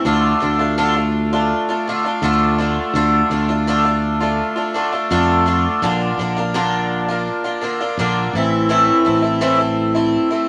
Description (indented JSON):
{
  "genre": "folk rock and heartland rock",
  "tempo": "83 BPM",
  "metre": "4/4",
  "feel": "straight",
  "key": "D minor",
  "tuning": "A4 = 442 Hz",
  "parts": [
    { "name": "picked twelve-string acoustic guitar", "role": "accompaniment", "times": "0.0-10.5 s", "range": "A2 to F4", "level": "-19 LUFS", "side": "equal", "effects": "none" },
    { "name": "modern bright fingered electric bass", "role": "bass", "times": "0.0-10.1 s", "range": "A1 to F2", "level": "-23 LUFS", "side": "equal", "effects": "none" }
  ],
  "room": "wet studio reverb, RT60 0.6 s",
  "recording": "none",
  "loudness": "-18 LUFS",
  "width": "mono",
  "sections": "0.0-10.5 A section",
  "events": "none",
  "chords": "0.0 Dm; 5.8 Bb; 8.3 Am",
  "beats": "| 0.05 0.77 1.50 2.22 | 2.94 3.66 4.38 5.11 | 5.83 6.54 7.26 7.98 | 8.70 9.41 10.13"
}